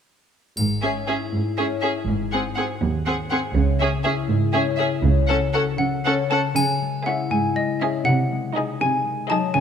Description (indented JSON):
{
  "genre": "cinematic, playful, whimsical film cue",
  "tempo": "80 BPM (dotted quarters)",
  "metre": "6/8",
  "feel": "straight",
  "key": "C# minor",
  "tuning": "A4 = 439 Hz",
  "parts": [
    { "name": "concert harp", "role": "arpeggios", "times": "0.6-9.6 s", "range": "G#2 to C#5", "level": "-26 LUFS", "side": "left 8 dB", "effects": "none" },
    { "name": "muted chamber cello section", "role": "bass", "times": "0.6-9.6 s", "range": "D#2 to C#3", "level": "-25 LUFS", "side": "right 4 dB", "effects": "none" },
    { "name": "muted chamber double bass section", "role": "bass", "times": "0.6-5.5 s", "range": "G#1 to C#2", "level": "-23 LUFS", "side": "right 3 dB", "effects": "none" },
    { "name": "triangle", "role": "percussion", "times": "0.6-1.5, 6.6-7.5 s", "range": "none", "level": "-31 LUFS", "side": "left 2 dB", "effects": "none" },
    { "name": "muted studio violin section", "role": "melody", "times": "0.8-9.5 s", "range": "D#5 to F#5", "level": "-30 LUFS", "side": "left 2 dB", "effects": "none" },
    { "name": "muted chamber violin section", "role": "second line", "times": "0.8-9.5 s", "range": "G#4 to A4", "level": "-27 LUFS", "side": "right 1 dB", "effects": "none" },
    { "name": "muted chamber viola section", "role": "accompaniment", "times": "0.8-9.5 s", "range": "B#3 to D#4", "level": "-29 LUFS", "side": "right 3 dB", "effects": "none" },
    { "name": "xylophone with rubber mallets", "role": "melody", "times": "5.8-9.6 s", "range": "D#5 to A5", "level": "-24 LUFS", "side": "left 2 dB", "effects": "none" }
  ],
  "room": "moderate concert hall reverb, RT60 1.8 s",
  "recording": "none",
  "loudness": "-19 LUFS",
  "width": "side -8 dB against mid",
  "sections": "0.6-6.6 A section; 6.6-9.6 B section",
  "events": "none",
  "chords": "0.6 C#m/G#; 2.1 G#7; 3.5 C#m; 5.0 F#m/C#; 6.6 C#m; 8.1 G#7/B#"
}